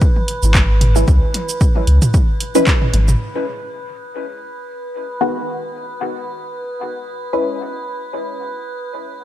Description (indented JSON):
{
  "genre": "dub techno",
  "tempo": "113 BPM",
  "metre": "4/4",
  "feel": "swing 55% on 16ths",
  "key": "G# minor",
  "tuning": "A4 = 440 Hz",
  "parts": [
    { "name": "filtered dub chord stab", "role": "stabs", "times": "0.0-9.2 s", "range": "D#3 to B4", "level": "-21 LUFS", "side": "left 1 dB", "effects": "phaser, sidechain pumping, dub echo" },
    { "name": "electronic kick drum", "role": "drums", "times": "0.0-2.8 s", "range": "none", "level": "-14 LUFS", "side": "equal", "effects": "none" },
    { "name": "punchy analog drum machine", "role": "drums", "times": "0.0-3.2 s", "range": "handclaps, hi-hat, shaker", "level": "-22 LUFS", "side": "right 1 dB", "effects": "low-pass filter on hats, low-pass filter on perc, low-pass filter on snare" },
    { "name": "metallic inharmonic drone", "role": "texture", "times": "0.0-9.2 s", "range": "B4", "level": "-28 LUFS", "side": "right 1 dB", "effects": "chorus, built-in reverb, sidechain pumping" },
    { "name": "electronic toms", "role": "percussion", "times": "0.2-3.2 s", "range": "none", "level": "-22 LUFS", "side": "equal", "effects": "sidechain pumping on toms" },
    { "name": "pure sine sub bass", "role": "bass", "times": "0.4-3.2 s", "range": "G#1 to C#2", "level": "-13 LUFS", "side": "equal", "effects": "sidechain pumping" }
  ],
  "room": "light reverb",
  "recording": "none",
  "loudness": "-15 LUFS",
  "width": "side -12 dB against mid",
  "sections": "0.0-3.2 A section; 3.2-9.2 B section",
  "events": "filter sweep on synth stab 0.0-3.2",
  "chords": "0.0 C#m7; 3.2 G#m7; 7.5 C#m7"
}